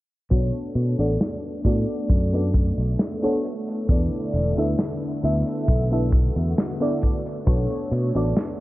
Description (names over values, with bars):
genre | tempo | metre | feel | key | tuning
vaporwave | 67 BPM | 4/4 | straight | B minor | A4 = 439 Hz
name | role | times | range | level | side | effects
FM electric piano with soft pad layer | accompaniment | 0.3-8.3 s | B3 to E5 | -26 LUFS | equal | analog chorus, tape echo
soft string machine | sustained chords | 0.7-8.6 s | D3 to F#4 | -31 LUFS | equal | ensemble chorus
fingered electric bass | bass | 0.3-8.3 s | E1 to B2 | -22 LUFS | equal | none
kick drum | drums | 0.3-7.7 s | none | -21 LUFS | equal | none
modern studio drum kit | drums | 0.3-8.6 s | hi-hat, snare drum | -26 LUFS | equal | none
room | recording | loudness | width
light reverb, studio ambience | worn, warbling old tape, cassette tape, warbly pitch drift, low-pass filter | -20 LUFS | side -17 dB against mid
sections
0.3-8.6 A section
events
filter sweep 0.3-8.6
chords
0.3 Bm9; 3.4 E7sus4; 7.5 Bm9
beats
| 0.31 1.21 2.10 3.00 | 3.89 4.79 5.68 6.58 | 7.47 8.37